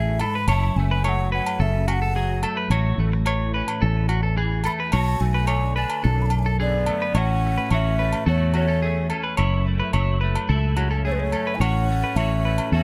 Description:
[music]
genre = highlife guitar band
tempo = 108 BPM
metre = 4/4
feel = straight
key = A major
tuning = A4 = 440 Hz
[part]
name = mellow hollow wooden flute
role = melody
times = 0.0-12.8 s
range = B4 to B5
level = -30 LUFS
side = equal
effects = plate reverb
[part]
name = semi-hollow electric guitar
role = accompaniment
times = 0.0-12.8 s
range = E2 to F#4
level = -32 LUFS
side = equal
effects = ensemble chorus
[part]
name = clean electric guitar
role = arpeggios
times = 0.0-12.8 s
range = F#4 to C#5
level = -30 LUFS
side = equal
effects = plate reverb, tape echo
[part]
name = fingered electric bass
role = bass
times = 0.0-12.8 s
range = F#1 to E2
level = -24 LUFS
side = equal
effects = none
[part]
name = agogo bells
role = percussion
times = 0.2-12.7 s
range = none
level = -34 LUFS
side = equal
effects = none
[part]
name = clear trumpet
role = second line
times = 6.6-12.8 s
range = G#3 to E4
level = -34 LUFS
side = equal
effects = plate reverb
[sound]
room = light reverb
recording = none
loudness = -22 LUFS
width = mono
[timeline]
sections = 0.0-7.2 A section; 7.2-12.8 B section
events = none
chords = 0.5 F#m7; 2.7 A6; 4.9 Bm7; 7.2 A6; 9.4 F#m7; 11.6 A6

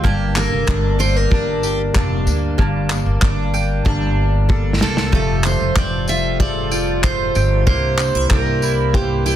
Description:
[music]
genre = acoustic pop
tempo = 94 BPM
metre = 4/4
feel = straight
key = unclear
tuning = A4 = 441 Hz
[part]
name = picked steel-string acoustic guitar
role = melody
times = 0.0-9.4 s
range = G4 to E5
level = -22 LUFS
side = right 2 dB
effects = none
[part]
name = picked plugged-in steel-string acoustic guitar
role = accompaniment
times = 0.0-9.4 s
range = G2 to G4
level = -24 LUFS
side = right 1 dB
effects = double-tracked left and right
[part]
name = warm upright piano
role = accompaniment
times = 0.0-9.4 s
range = G3 to A5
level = -29 LUFS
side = left 6 dB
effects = none
[part]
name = mandolin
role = arpeggios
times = 0.0-9.4 s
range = A3 to G5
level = -27 LUFS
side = right 6 dB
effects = none
[part]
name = upright bass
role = bass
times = 0.0-9.4 s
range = F1 to D2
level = -20 LUFS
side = equal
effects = none
[part]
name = modern studio drum kit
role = drums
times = 0.0-9.4 s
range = handclaps, kick drum, snare drum, tambourine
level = -20 LUFS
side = equal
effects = none
[part]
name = pedal harmonium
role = sustained chords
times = 5.1-9.4 s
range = C3 to F4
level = -30 LUFS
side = left 1 dB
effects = none
[sound]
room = light reverb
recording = dense, heavily limited modern master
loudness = -15 LUFS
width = side -11 dB against mid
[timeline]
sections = 0.0-5.1 A section; 5.1-9.4 B section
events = drum fill 3.9-5.1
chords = 0.0 Gmadd9; 5.1 Fadd9; 7.7 C7

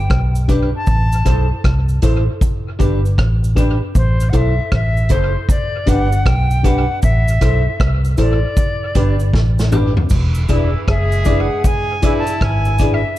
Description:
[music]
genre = roots reggae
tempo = 78 BPM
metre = 4/4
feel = swing 65% on 16ths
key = A dorian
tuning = A4 = 440 Hz
[part]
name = bright reedy silver concert flute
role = melody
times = 0.0-13.2 s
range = C5 to A5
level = -23 LUFS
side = left 1 dB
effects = tape echo
[part]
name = mellow reed electric piano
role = stabs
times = 0.0-13.0 s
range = D4 to D5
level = -26 LUFS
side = left 8 dB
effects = none
[part]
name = vintage muted fingered electric bass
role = bass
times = 0.0-13.0 s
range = E1 to C2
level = -16 LUFS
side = equal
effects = tube saturation
[part]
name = vintage drum kit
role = drums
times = 0.1-13.0 s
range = crash cymbal, hi-hat, kick drum, rim click, snare drum, toms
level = -18 LUFS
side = equal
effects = none
[part]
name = cabasa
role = percussion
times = 0.4-13.2 s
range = none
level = -38 LUFS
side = right 4 dB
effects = none
[part]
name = electric guitar at the edge of break-up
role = accompaniment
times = 0.5-13.0 s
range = D4 to C5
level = -25 LUFS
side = right 4 dB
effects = spring reverb, tape echo
[part]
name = warm horn section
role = second line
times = 10.5-12.8 s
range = E3 to G#4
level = -24 LUFS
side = right 1 dB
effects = tape echo
[sound]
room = little or no reverb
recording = dark, warm production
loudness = -13 LUFS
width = side -14 dB against mid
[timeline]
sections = 0.0-10.1 A section; 10.1-13.2 B section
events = drum fill 9.3-10.1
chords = 0.0 G; 0.9 Am; 2.4 G; 4.0 Am; 5.5 G; 7.0 Am; 8.6 G; 10.1 E7

